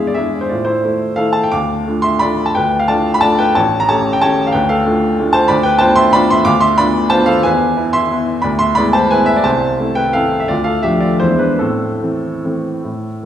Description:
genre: classical, piano waltz.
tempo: 144-194 BPM.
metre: 3/4.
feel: rubato.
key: A minor.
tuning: A4 = 440 Hz.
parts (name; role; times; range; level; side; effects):
warm upright piano; solo; 0.0-13.3 s; A1 to D6; -12 LUFS; equal; none.
room: wet recital hall reverb, RT60 1.9 s.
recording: heard from further back in the room.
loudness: -12 LUFS.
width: side -10 dB against mid.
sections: 0.0-13.3 A section.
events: none.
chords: 0.0 E7; 0.5 Am; 1.5 Dm; 3.6 A7; 4.5 Dm; 5.5 Bdim/D; 7.5 E; 8.5 E7/D; 9.5 Am/C; 10.5 Dm; 11.2 E7; 11.6 Am.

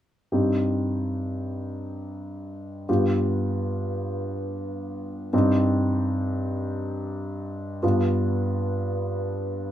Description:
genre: classical.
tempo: 48 BPM (dotted quarters).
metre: 6/8.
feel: uneven beats, rubato.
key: C minor.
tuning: A4 = 438 Hz.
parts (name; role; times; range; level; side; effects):
clear grand piano; accompaniment; 0.3-9.7 s; G2 to G4; -24 LUFS; equal; none.
room: moderate studio reverb, RT60 0.5 s.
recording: minimal, uncompressed stereo recording.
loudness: -24 LUFS.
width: side -11 dB against mid.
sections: 0.3-9.7 A section.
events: none.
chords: 0.3 Cm/G; 2.9 G7; 5.3 Cm/G; 7.8 G7.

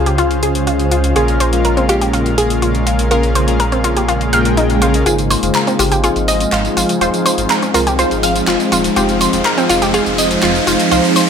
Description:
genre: progressive house.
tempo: 123 BPM.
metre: 4/4.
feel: straight.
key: unclear.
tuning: A4 = 441 Hz.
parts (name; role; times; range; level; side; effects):
wide unison pluck; melody; 0.0-11.3 s; F4 to F5; -20 LUFS; equal; ping-pong delay.
shimmering ambient pad; sustained chords; 0.0-11.3 s; Db3 to C5; -19 LUFS; right 1 dB; chorus, built-in reverb.
soft supersaw; stabs; 0.0-11.3 s; Bb2 to G5; -18 LUFS; left 2 dB; cassette tape, low-pass filter, ping-pong delay.
dark detuned saw bass; bass; 0.0-11.0 s; Eb1 to Db2; -19 LUFS; equal; none.
analog pluck; arpeggios; 0.1-11.3 s; C4 to F5; -19 LUFS; equal; chorus, ping-pong delay.
deep house drum kit; drums; 0.1-11.3 s; handclaps, hi-hat, tambourine; -21 LUFS; equal; overdrive, high-pass filter on hats, high-pass filter on perc, high-pass filter on snare, high-pass filter on room.
swell and riser; sound effects; 4.3-11.3 s; none; -22 LUFS; right 1 dB; none.
room: light reverb.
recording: none.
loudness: -12 LUFS.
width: side -7 dB against mid.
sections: 0.0-5.1 A section; 5.1-11.3 B section.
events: swell 4.3-5.1; build-up 5.1-11.3; riser 5.1-11.3; filter sweep on supersaw synth 5.1-11.3.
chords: 0.0 Dbmaj7; 1.2 Bbm7; 5.1 Ab6.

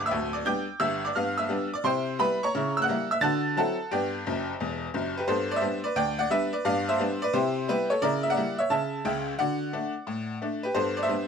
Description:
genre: jazz, stride piano.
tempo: 175 BPM.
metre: 4/4.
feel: swing 66% on 8ths.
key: G major.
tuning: A4 = 440 Hz.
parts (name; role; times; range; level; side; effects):
tack piano; solo; 0.0-11.3 s; D1 to A6; -25 LUFS; equal; none.
room: moderate studio ambience, RT60 0.5 s.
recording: none.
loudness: -25 LUFS.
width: side -6 dB against mid.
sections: 0.0-5.3 A section; 5.3-11.3 A section.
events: honky-tonk piano fill 4.3-5.3.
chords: 0.0 G; 1.2 G7; 1.8 Cmaj7; 2.5 C#dim7; 3.2 D9; 3.9 G; 7.3 Cmaj7; 8.0 C#dim7; 9.4 D; 10.8 G.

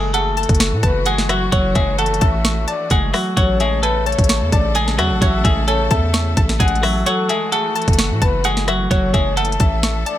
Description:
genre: hip hop, trap.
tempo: 130 BPM.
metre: 4/4.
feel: half-time.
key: F# minor.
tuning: A4 = 443 Hz.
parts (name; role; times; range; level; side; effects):
semi-hollow electric guitar; melody; 0.0-10.2 s; F#3 to A4; -21 LUFS; equal; none.
breathy flute-like synth lead; second line; 0.0-10.2 s; G#4 to F#5; -24 LUFS; left 4 dB; chorus, tape echo.
string-like resonator pluck; accompaniment; 0.0-10.2 s; C#5 to C#6; -25 LUFS; right 1 dB; chorus.
rich symphonic string section; sustained chords; 0.0-10.2 s; C#3 to A4; -28 LUFS; left 1 dB; none.
hard-hitting 808-style bass; bass; 0.0-10.0 s; F#1 to A2; -20 LUFS; equal; none.
trap drum kit; drums; 0.1-10.2 s; hi-hat, kick drum, rim click, snare drum; -18 LUFS; equal; vintage 12-bit sampler grit.
room: little or no reverb.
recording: none.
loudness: -14 LUFS.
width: side -12 dB against mid.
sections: 0.0-10.2 A section.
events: kick muted 7.1-7.5.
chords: 0.0 F#m7; 3.4 Amaj7; 7.1 F#m7.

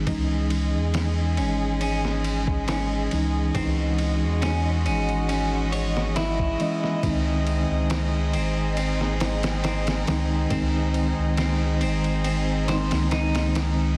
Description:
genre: trip hop.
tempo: 69 BPM.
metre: 4/4.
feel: straight.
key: unclear.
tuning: A4 = 439 Hz.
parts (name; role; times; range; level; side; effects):
mellow tine electric piano; accompaniment; 0.0-14.0 s; D#3 to D#5; -30 LUFS; equal; tremolo, tape echo.
soft dub sub bass; bass; 0.0-14.0 s; G#1 to E2; -28 LUFS; equal; none.
bowed-like drone; texture; 0.0-14.0 s; G#3 to G#4; -44 LUFS; equal; none.
rich chamber violin section; sustained chords; 0.1-13.9 s; G#3 to D#5; -34 LUFS; equal; none.
trip hop sampler-style drum kit; drums; 0.1-13.8 s; kick drum, ride cymbal, snare drum; -33 LUFS; equal; studio ambience.
clean electric guitar; arpeggios; 1.4-14.0 s; B#3 to C#5; -34 LUFS; equal; tape echo.
room: little or no reverb.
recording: dense, heavily limited modern master, vinyl crackle.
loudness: -24 LUFS.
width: mono.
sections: 0.0-14.0 A section.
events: kick drops out 12.2-14.0.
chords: 0.1 C#madd9; 7.0 G#.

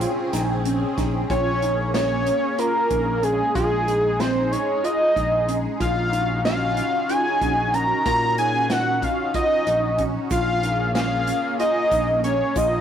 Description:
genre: progressive instrumental, band music in an uneven meter.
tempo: 186 BPM (eighths).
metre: 7/8.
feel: straight.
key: Bb minor.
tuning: A4 = 440 Hz.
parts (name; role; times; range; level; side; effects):
lush unison pad; accompaniment; 0.0-12.8 s; Ab3 to Ab4; -28 LUFS; equal; chorus, phaser.
tine electric piano; arpeggios; 0.0-12.8 s; C4 to F4; -28 LUFS; right 1 dB; medium stereo tremolo.
fingered electric bass; bass; 0.0-12.8 s; Bb1 to Bb2; -27 LUFS; left 1 dB; none.
warm soul drum kit; drums; 0.0-12.7 s; hi-hat, kick drum, snare drum; -29 LUFS; right 1 dB; none.
tube shaker; percussion; 0.3-1.1, 10.3-12.8 s; none; -41 LUFS; right 4 dB; none.
fat analog lead; melody; 1.3-12.8 s; Ab4 to Bb5; -21 LUFS; equal; none.
room: moderate stone room reverb, RT60 1.1 s.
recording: rough rehearsal-room recording, warm saturation.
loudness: -19 LUFS.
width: side -9 dB against mid.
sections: 0.0-1.3 A section; 1.3-12.8 B section.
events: none.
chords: 0.0 Bbm9; 1.3 Bbm7; 3.6 Fm7/Bb; 5.8 Ebm9/Bb; 10.3 Bbm7.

